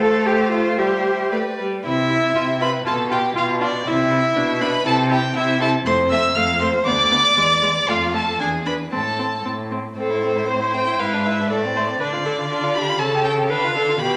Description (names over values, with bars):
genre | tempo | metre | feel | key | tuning
quick classical-period movement for string quartet | 119 BPM | 2/4 | rubato | C major, A minor from 5.9 s | A4 = 438 Hz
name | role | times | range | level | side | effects
clear violin | melody | 0.0-14.2 s | C5 to F6 | -24 LUFS | equal | none
rich violin | second line | 0.0-14.2 s | A3 to F5 | -25 LUFS | equal | none
rich viola | accompaniment | 0.0-14.2 s | G3 to C5 | -26 LUFS | equal | none
rich cello | bass | 0.0-14.2 s | D2 to A4 | -26 LUFS | equal | none
room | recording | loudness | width
wet recital hall reverb, RT60 1.3 s | none | -19 LUFS | mono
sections
0.0-1.8 A section; 1.8-10.0 B section; 10.0-14.2 C section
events
none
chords
0.0 F/A; 0.8 C/G; 1.3 G; 1.8 C; 2.4 Cmaj7; 2.9 Bm7b5; 3.9 C; 4.4 Bmadd11; 4.9 C; 5.9 F; 6.9 Bm/D; 7.4 E7; 7.9 F; 8.4 E7; 8.9 Am; 11.0 E7/G#; 11.5 Am; 12.0 Dm; 13.0 A7/C#; 13.5 Dm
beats
0.25 | 0.78 1.31 | 1.84 2.36 | 2.86 3.37 | 3.87 4.37 | 4.87 5.36 | 5.86 6.37 | 6.87 7.38 | 7.89 8.41 | 8.93 9.45 | 9.97 10.48 | 10.99 11.50 | 12.00 12.50 | 13.00 13.50 | 14.00